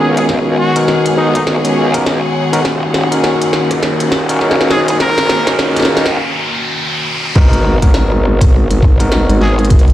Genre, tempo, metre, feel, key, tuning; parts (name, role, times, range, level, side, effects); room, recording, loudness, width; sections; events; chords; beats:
glitch hop; 102 BPM; 4/4; swing 60% on 16ths; G# minor; A4 = 440 Hz
clear trumpet; melody; 0.0-5.6, 9.4-9.7 s; D#4 to A#4; -20 LUFS; equal; low-pass filter, dub echo
warbly tape-like pad; sustained chords; 0.0-7.3 s; D#3 to F#4; -19 LUFS; left 2 dB; chorus, built-in reverb, sidechain pumping
overdriven tine electric piano; stabs; 0.0-9.9 s; B3 to A#4; -18 LUFS; equal; sidechain pumping, low-pass filter, dub echo
growl bass; bass; 0.0-9.9 s; D#1 to C#2; -15 LUFS; equal; chorus, tube saturation, high-pass filter
riser and impact; sound effects; 0.6-9.7 s; -22 LUFS; equal
clear studio string section; texture; 0.0-6.2 s; G#4 to F#5; -21 LUFS; left 1 dB; sidechain pumping
glitchy drum kit; drums; 0.2-9.9 s; crash cymbal, hi-hat, snare drum; -18 LUFS; equal
electronic kick drum; drums; 0.3-9.8 s; -10 LUFS; equal; high-pass filter on kick
rubbery square bass; bass; 9.9 s; B1; -7 LUFS; equal
light reverb; played on a big sound system in a bare room, stone room reverb, vinyl crackle; -10 LUFS; side -13 dB against mid
0.0-7.4 A section; 7.4-9.9 B section
build-up 0.0-7.4; drum fill 0.0-6.2; filter sweep on tine electric piano 0.0-7.4; riser 0.6-7.4; break 6.2-7.4; drop 7.4-9.9; impact 7.4-9.7
0.0 G#m7; 2.6 D#m7; 7.4 G#m7
| 0.29 0.88 1.47 2.06 | 2.65 3.24 3.83 4.41 | 5.00 5.59 6.18 6.77 | 7.35 7.94 8.53 9.12 | 9.71